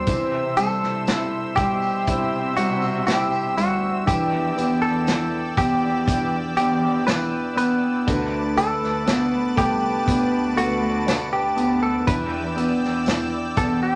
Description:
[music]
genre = pop ballad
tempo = 60 BPM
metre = 4/4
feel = straight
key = unclear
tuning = A4 = 440 Hz
[part]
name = direct-recorded clean electric guitar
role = melody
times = 0.0-14.0 s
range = F#4 to C5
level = -27 LUFS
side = equal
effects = vibrato effect
[part]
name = felt-muted upright piano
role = accompaniment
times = 0.0-14.0 s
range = D3 to E4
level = -26 LUFS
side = equal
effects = none
[part]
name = lush unison pad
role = sustained chords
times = 0.0-14.0 s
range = B4 to E6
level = -32 LUFS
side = equal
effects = chorus
[part]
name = fingerpicked plugged-in steel-string acoustic guitar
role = arpeggios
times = 0.0-14.0 s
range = C3 to C5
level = -34 LUFS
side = equal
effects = none
[part]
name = muted studio cello section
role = bass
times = 0.1-14.0 s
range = C2 to C3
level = -34 LUFS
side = equal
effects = none
[part]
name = natural country drum kit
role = drums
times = 0.1-13.8 s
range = hi-hat, kick drum, snare drum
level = -27 LUFS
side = equal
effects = none
[part]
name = tambourine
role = percussion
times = 0.1-13.8 s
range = none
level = -46 LUFS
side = equal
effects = none
[sound]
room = wet studio ambience, RT60 0.4 s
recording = none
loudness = -22 LUFS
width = mono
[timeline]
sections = 0.0-14.0 A section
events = none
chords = 0.1 C; 4.1 Em7; 8.1 Bm7; 12.1 Em7

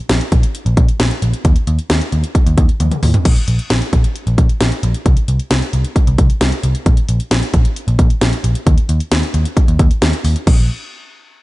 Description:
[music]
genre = synth-pop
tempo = 133 BPM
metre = 4/4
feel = straight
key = unclear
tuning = A4 = 439 Hz
[part]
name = vintage muted picked electric bass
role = bass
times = 0.1-10.7 s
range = Bb1 to Eb2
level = -15 LUFS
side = equal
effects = none
[part]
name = house drum kit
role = drums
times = 0.1-10.6 s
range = crash cymbal, hi-hat, kick drum, snare drum, toms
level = -14 LUFS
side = equal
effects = none
[sound]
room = little or no reverb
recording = nothing above 10.7 kHz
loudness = -12 LUFS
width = side -19 dB against mid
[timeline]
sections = 0.0-3.3 A section; 3.3-10.5 B section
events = drum fill 2.8-3.3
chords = none

